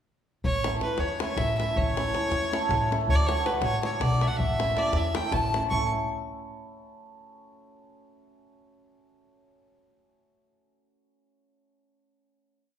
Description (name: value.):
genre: balkan folk, Balkan wedding band.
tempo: 320 BPM (eighths).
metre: 7/8.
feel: straight.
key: A major.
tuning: A4 = 440 Hz.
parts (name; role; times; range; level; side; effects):
clear fiddle; melody; 0.4-5.9 s; B4 to C#6; -28 LUFS; left 1 dB; none.
upright bass; bass; 0.4-5.9 s; A1 to E2; -29 LUFS; equal; none.
davul; percussion; 0.4-5.9 s; none; -32 LUFS; left 2 dB; none.
cimbalom; accompaniment; 0.6-5.9 s; A3 to A4; -30 LUFS; right 2 dB; none.
room: wet large studio reverb, RT60 1.4 s.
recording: band playing live in one room.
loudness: -24 LUFS.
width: side -9 dB against mid.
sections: 0.4-5.7 A section; 5.7-7.0 final chord.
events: none.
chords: 0.4 A; 3.1 D; 4.4 A.